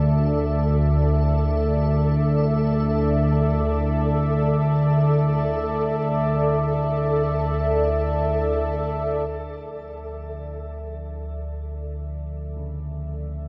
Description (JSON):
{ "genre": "dark ambient drone", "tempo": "free time", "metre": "none", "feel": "none", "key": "D minor", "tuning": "A4 = 441 Hz", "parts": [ { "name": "sweeping resonant pad", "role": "sustained chords", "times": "0.0-13.5 s", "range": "A4 to E5", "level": "-28 LUFS", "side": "equal", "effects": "chorus, shimmer reverb" }, { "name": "analog drone", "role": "drone", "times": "0.0-13.5 s", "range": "D2 to F3", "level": "-24 LUFS", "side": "equal", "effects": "chorus" }, { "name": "flickering grainy texture", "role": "texture", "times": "0.0-9.3 s", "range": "A4", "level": "-36 LUFS", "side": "equal", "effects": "built-in reverb, shimmer reverb" }, { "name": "warm grand piano", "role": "arpeggios", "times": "12.6-13.5 s", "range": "C#3", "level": "-48 LUFS", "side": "equal", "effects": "shimmer reverb" } ], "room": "wet huge ambient reverb, RT60 8.7 s", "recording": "dark, warm production", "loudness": "-22 LUFS", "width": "mono", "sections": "0.0-9.3 A section; 9.3-13.5 B section", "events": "none", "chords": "0.0 D5; 9.3 Dm" }